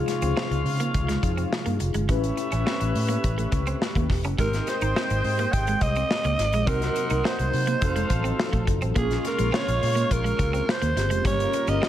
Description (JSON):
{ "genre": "polished 1980s jazz-funk pop", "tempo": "105 BPM", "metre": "4/4", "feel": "straight", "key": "unclear", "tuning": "A4 = 441 Hz", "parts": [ { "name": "warm horn section", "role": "second line", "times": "0.0-11.9 s", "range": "F4 to G5", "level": "-33 LUFS", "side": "left 2 dB", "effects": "digital delay" }, { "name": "mellow tine electric piano", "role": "accompaniment", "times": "0.0-11.9 s", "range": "C3 to B4", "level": "-32 LUFS", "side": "left 3 dB", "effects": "medium stereo tremolo, lush chorus" }, { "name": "warm analog pad", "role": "sustained chords", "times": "0.0-11.9 s", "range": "C3 to Bb4", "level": "-36 LUFS", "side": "right 1 dB", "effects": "chorus" }, { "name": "clean electric guitar", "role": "riff", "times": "0.1-11.9 s", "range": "G3 to Eb4", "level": "-32 LUFS", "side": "right 4 dB", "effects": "analog chorus" }, { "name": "modern studio drum kit", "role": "drums", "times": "0.1-11.9 s", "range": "hi-hat, kick drum, snare drum", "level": "-28 LUFS", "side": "left 1 dB", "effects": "none" }, { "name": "vintage muted fingered electric bass", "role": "bass", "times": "0.2-11.8 s", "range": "E1 to Db3", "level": "-26 LUFS", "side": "equal", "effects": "none" }, { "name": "growling alto saxophone", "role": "melody", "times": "4.4-11.9 s", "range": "Ab4 to G5", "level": "-27 LUFS", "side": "right 3 dB", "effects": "none" } ], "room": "light reverb, studio reverb", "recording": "none", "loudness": "-22 LUFS", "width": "side -12 dB against mid", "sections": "0.0-11.9 A section", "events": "none", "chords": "0.0 Dbmaj7; 2.1 A9; 4.4 Abmaj7; 6.7 Cm7b5; 7.8 F7b9; 9.0 Bbm9; 11.2 Gm7b5", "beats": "0.37 0.94 1.52 | 2.09 2.66 3.24 3.81 | 4.38 4.96 5.53 6.10 | 6.67 7.25 7.82 8.39 | 8.96 9.53 10.11 10.68 | 11.25 11.82" }